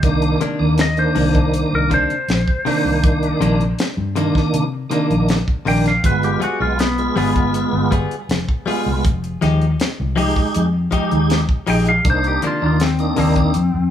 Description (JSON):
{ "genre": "straight-eighth soul blues", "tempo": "80 BPM", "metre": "4/4", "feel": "straight", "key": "C minor", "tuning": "A4 = 441 Hz", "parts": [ { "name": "clean lap steel guitar", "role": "melody", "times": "0.0-13.9 s", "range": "B3 to G5", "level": "-21 LUFS", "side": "left 2 dB", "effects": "plate reverb, analog delay" }, { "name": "tonewheel organ", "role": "accompaniment", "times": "0.0-13.6 s", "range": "Eb3 to G4", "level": "-20 LUFS", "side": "right 3 dB", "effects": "slow rotary speaker, overdrive, chorus vibrato" }, { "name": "vintage muted fingered electric bass", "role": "bass", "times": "0.0-13.9 s", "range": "F1 to C3", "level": "-19 LUFS", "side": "left 1 dB", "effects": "none" }, { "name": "tight funk drum kit", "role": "drums", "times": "0.0-13.7 s", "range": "hi-hat, kick drum, snare drum", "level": "-21 LUFS", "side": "equal", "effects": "none" }, { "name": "direct-recorded clean electric guitar", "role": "stabs", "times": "0.4-13.4 s", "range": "C3 to Ab4", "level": "-24 LUFS", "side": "left 5 dB", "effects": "analog delay" } ], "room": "moderate studio reverb, RT60 0.8 s", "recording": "none", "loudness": "-15 LUFS", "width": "side -10 dB against mid", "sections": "0.0-13.9 A section", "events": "none", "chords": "0.0 Cm9; 6.0 G7b9; 9.1 Fm9; 12.1 Cm9" }